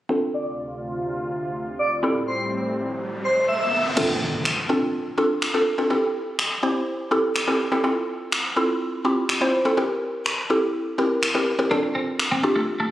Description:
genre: dance-pop.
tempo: 124 BPM.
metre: 4/4.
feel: straight.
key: D minor.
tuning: A4 = 441 Hz.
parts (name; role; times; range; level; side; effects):
mallet-like synth pluck; accompaniment; 0.1-12.8 s; C4 to C5; -22 LUFS; equal; chorus, phaser, low-pass filter.
warm analog pad; sustained chords; 0.1-3.9 s; D2 to F4; -29 LUFS; equal; chorus, low-pass filter.
airy dreamy lead; melody; 0.3-3.8 s; C5 to E5; -24 LUFS; equal; chorus, phaser, low-pass filter, tape echo.
riser and impact; sound effects; 2.7-5.9 s; none; -29 LUFS; equal; none.
detuned 8-bit digital drum machine; drums; 4.0-12.3 s; crash cymbal, finger snaps; -26 LUFS; equal; none.
twelve-string electric guitar; riff; 11.7-12.9 s; A3 to D4; -25 LUFS; right 1 dB; analog chorus.
room: moderate lush hall reverb, RT60 2.1 s.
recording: recorded on a phone in the room, studio reverb.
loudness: -21 LUFS.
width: side -14 dB against mid.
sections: 0.1-4.0 A section; 4.0-12.9 B section.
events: filter sweep 0.1-4.0; riser 2.7-4.0; impact 4.0-5.9.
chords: 0.1 Dm7; 2.0 Am7; 4.0 Dm7; 5.9 Am7; 7.8 Fmaj7; 9.8 C7; 11.7 Dm7.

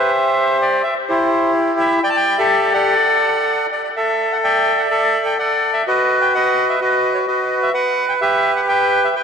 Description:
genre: tango.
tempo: 127 BPM.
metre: 4/4.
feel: rubato.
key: D major from 3.9 s.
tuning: A4 = 445 Hz.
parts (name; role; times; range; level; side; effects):
bandoneon; solo; 0.0-9.2 s; E4 to A5; -14 LUFS; equal; ping-pong delay.
room: wet lush hall reverb, RT60 2.7 s.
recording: dreamy mix soaked in reverb.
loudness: -14 LUFS.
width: side -6 dB against mid.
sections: 0.0-3.9 A section; 3.9-9.2 B section.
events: none.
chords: 0.1 C; 2.0 Dsus4; 3.0 D; 3.9 Dsus2; 5.8 B; 7.7 Gmaj7.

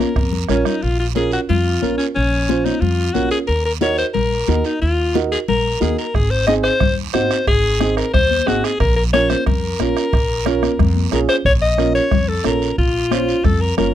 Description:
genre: latin, cumbia.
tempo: 181 BPM.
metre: 4/4.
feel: straight.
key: Bb minor.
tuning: A4 = 442 Hz.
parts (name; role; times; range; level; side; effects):
breathy alto saxophone; melody; 0.0-13.9 s; Db4 to Eb5; -19 LUFS; left 3 dB; none.
dark upright piano; accompaniment; 0.0-13.9 s; C4 to C5; -20 LUFS; right 6 dB; none.
upright bass; bass; 0.0-13.9 s; Gb1 to F2; -21 LUFS; equal; none.
guiro; percussion; 0.0-13.9 s; none; -32 LUFS; right 18 dB; none.
bombo; percussion; 0.2-0.8, 6.1-13.9 s; none; -20 LUFS; right 1 dB; none.
congas; percussion; 0.3-13.9 s; none; -24 LUFS; left 15 dB; none.
room: light reverb.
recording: dry, close 1970s-style studio recording.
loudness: -15 LUFS.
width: side -11 dB against mid.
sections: 0.8-11.5 A section; 11.5-13.9 B section.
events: drum fill 0.0-0.8.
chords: 0.0 Bbm; 3.5 Ebm; 6.1 Ab; 8.8 Bbm.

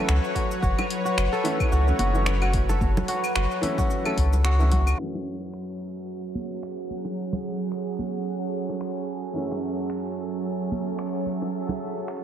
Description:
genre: organic downtempo.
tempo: 110 BPM.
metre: 4/4.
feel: swing 56% on 16ths.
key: F# minor.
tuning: A4 = 439 Hz.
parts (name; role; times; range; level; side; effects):
felt-muted upright piano; accompaniment; 0.0-12.2 s; F#2 to C#4; -33 LUFS; equal; sidechain pumping, ping-pong delay.
bowed-like drone; sustained chords; 0.0-12.2 s; F#3 to F#5; -29 LUFS; right 1 dB; built-in reverb, sidechain pumping.
kora; arpeggios; 0.0-6.2 s; F#4 to A4; -30 LUFS; equal; ping-pong delay.
warm sub bass; bass; 0.1-4.9 s; F#1 to C#2; -21 LUFS; equal; none.
deep house drum kit; drums; 0.1-12.2 s; claves, finger snaps, hi-hat, shaker; -31 LUFS; left 1 dB; overdrive.
electronic kick drum; drums; 0.4-4.8 s; none; -27 LUFS; equal; overdrive.
bongos and congas; percussion; 0.8-11.8 s; none; -34 LUFS; right 2 dB; none.
room: moderate lush hall reverb, RT60 1.7 s.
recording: dreamy mix soaked in reverb, low-pass filter.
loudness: -23 LUFS.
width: side -10 dB against mid.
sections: 0.0-5.0 A section; 5.0-12.2 B section.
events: filter sweep 5.0-12.2.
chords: 0.0 F#m; 5.0 F#madd9.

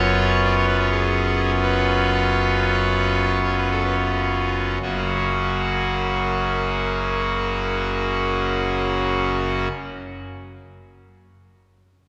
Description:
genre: classical, chorale-style piece for pipe organ.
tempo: 35-44 BPM.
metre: 4/4.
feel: straight.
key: unclear.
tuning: A4 = 440 Hz.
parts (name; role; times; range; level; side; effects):
pipe organ, trumpet; solo; 0.0-9.7 s; F#1 to D5; -22 LUFS; equal; none.
room: wet church reverb, RT60 2.7 s.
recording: none.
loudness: -21 LUFS.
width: mono.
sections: 0.0-4.8 A section; 4.8-11.5 B section.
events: slowing down 0.0-4.8.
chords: 0.0 C#7/F#; 4.8 F#.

